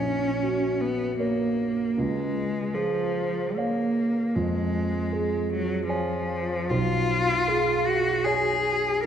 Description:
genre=classical, romantic duo for cello and grand piano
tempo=77 BPM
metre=3/4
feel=rubato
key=unclear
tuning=A4 = 443 Hz
part: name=clear cello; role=melody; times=0.0-9.1 s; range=E#3 to G#4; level=-25 LUFS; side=left 1 dB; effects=none
part: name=dark grand piano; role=accompaniment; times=0.0-9.1 s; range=A#1 to G#5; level=-27 LUFS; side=right 2 dB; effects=none
room=wet concert hall reverb, RT60 2.3 s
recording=recorded in a church or concert hall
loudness=-23 LUFS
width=side -8 dB against mid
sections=0.0-9.1 A section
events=none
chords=0.0 F#/A#; 2.0 C#; 4.3 C#/E#; 6.7 C#7/B

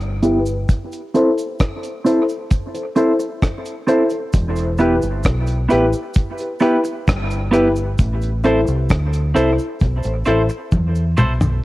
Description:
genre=dub reggae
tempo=66 BPM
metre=4/4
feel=straight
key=unclear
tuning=A4 = 440 Hz
part: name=deep dub fingered electric bass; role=bass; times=0.0-11.6 s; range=E1 to E2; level=-20 LUFS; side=equal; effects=transformer saturation
part: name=deep reggae drum kit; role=drums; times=0.0-11.6 s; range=hi-hat, kick drum, rim click, toms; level=-18 LUFS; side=equal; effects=cassette tape
part: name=cabasa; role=percussion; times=0.0-11.6 s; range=none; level=-43 LUFS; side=right 4 dB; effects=high-pass filter on perc
part: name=clean electric guitar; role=accompaniment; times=0.2-11.3 s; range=B3 to C5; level=-21 LUFS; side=right 3 dB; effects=high-pass filter, low-pass filter, cassette tape, dub echo
part: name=warm upright piano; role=stabs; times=0.2-11.5 s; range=E4 to C5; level=-20 LUFS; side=left 2 dB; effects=high-pass filter, low-pass filter, cassette tape, dub echo
room=light reverb, small room ambience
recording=home recording on cassette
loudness=-16 LUFS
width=side -17 dB against mid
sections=0.0-11.6 A section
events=filter sweep 0.0-11.6; drum fill 10.7-11.6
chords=0.0 Em; 0.7 Am; 4.3 Em; 8.0 Am

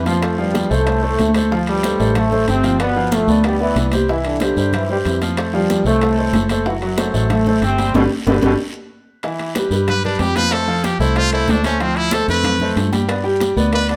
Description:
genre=latin, salsa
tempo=187 BPM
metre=4/4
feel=straight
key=unclear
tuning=A4 = 440 Hz
part: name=bright trombone section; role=melody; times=0.0-8.5 s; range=F#2 to F4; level=-22 LUFS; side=equal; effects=none
part: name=fingered electric bass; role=bass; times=0.0-14.0 s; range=F#1 to G2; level=-22 LUFS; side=equal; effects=none
part: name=clear baby grand piano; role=accompaniment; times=0.1-14.0 s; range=E3 to G5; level=-23 LUFS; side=equal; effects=none
part: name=congas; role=percussion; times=0.1-14.0 s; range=none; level=-28 LUFS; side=equal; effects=none
part: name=guiro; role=percussion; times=0.1-14.0 s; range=none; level=-36 LUFS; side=equal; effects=none
part: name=timbales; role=percussion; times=0.1-14.0 s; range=none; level=-28 LUFS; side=equal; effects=none
part: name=bongos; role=percussion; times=0.2-13.9 s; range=none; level=-33 LUFS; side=equal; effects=none
part: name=brilliant trumpet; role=melody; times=9.9-14.0 s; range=C4 to B4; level=-22 LUFS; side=equal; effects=none
room=moderate stone room reverb, RT60 1.0 s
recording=band playing live in one room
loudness=-17 LUFS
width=mono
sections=0.0-9.2 A section; 9.2-14.0 B section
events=band accent 7.9-9.2; drum fill 8.4-9.2; trumpet solo 9.2-14.0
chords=0.2 F6; 1.5 Dm7; 2.8 G7; 4.1 Cadd9; 5.4 F; 6.7 Am6; 7.9 G; 9.2 G6; 10.5 F6; 11.8 Dm7; 13.1 G

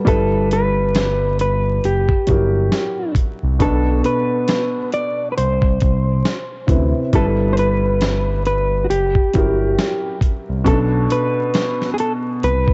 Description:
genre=lo-fi hip hop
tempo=68 BPM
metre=4/4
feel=swing 59% on 16ths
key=G major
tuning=A4 = 440 Hz
part: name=felt-muted upright piano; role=accompaniment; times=0.0-12.4 s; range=B2 to B4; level=-24 LUFS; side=equal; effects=cassette tape
part: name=clean electric guitar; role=melody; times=0.1-12.7 s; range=F#4 to D5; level=-23 LUFS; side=equal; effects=vibrato effect, cassette tape
part: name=smooth gliding synth bass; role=bass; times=0.1-12.7 s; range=F#1 to D2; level=-22 LUFS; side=equal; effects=none
part: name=dusty soul sampler-style drum kit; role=drums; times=0.1-12.7 s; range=hi-hat, kick drum, snare drum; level=-21 LUFS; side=equal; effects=none
part: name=tambourine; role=percussion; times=1.0-11.8 s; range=none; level=-43 LUFS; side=equal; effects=none
room=light reverb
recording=home recording on cassette, vinyl crackle, nothing above 7.9 kHz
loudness=-18 LUFS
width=mono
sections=0.1-12.7 A section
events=none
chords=0.1 G69; 1.8 F#7b9; 3.6 Bm7; 5.4 Cmaj7; 7.1 G69; 8.9 F#7b9; 10.7 Bm7

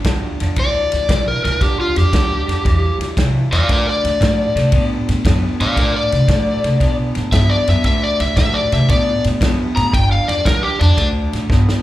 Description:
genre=electric blues shuffle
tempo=115 BPM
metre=4/4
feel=swing 67% on 8ths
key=G mixolydian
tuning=A4 = 440 Hz
part: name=upright bass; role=bass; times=0.0-11.7 s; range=G1 to C3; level=-18 LUFS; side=equal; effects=none
part: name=natural country drum kit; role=drums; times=0.0-11.8 s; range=kick drum, ride cymbal, snare drum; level=-19 LUFS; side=equal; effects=none
part: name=electric guitar through a small old amp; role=riff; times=0.1-11.8 s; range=G2 to B3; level=-23 LUFS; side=equal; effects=none
part: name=overdriven slide guitar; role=melody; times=0.6-11.1 s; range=D4 to Bb5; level=-18 LUFS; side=left 1 dB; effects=slapback echo
room=studio ambience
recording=live gig heard through the venue's PA, club reverb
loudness=-14 LUFS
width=side -15 dB against mid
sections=0.0-11.8 A section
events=electric slide guitar solo 0.0-11.8; drum fill 11.5-11.8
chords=0.0 G5; 3.7 D5; 9.9 G5; 11.0 D5

